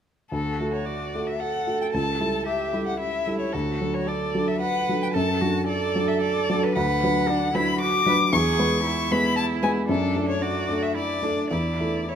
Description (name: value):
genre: quick classical-period movement for piano trio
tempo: 113 BPM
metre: 3/4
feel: rubato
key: D major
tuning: A4 = 441 Hz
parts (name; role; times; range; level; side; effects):
- rich violin; melody; 0.3-12.2 s; A4 to D6; -26 LUFS; left 6 dB; none
- warm cello; second line; 0.3-12.2 s; D4 to B4; -28 LUFS; right 9 dB; none
- dark baby grand piano; accompaniment; 0.3-12.2 s; C#2 to B4; -25 LUFS; equal; none
room: moderate recital hall reverb, RT60 1.6 s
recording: close, detailed microphones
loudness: -22 LUFS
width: side -8 dB against mid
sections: 0.3-12.2 A section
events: none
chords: 0.3 D; 1.9 A7/C#; 3.5 D; 5.1 D/F#; 6.8 Bm/D; 8.3 E; 9.9 D/F#; 11.5 A5/E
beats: | 0.32 0.86 1.40 | 1.93 2.46 3.00 | 3.53 4.07 4.61 | 5.14 5.67 6.21 | 6.75 7.28 7.80 | 8.33 8.85 9.37 | 9.89 10.42 10.95 | 11.51 12.09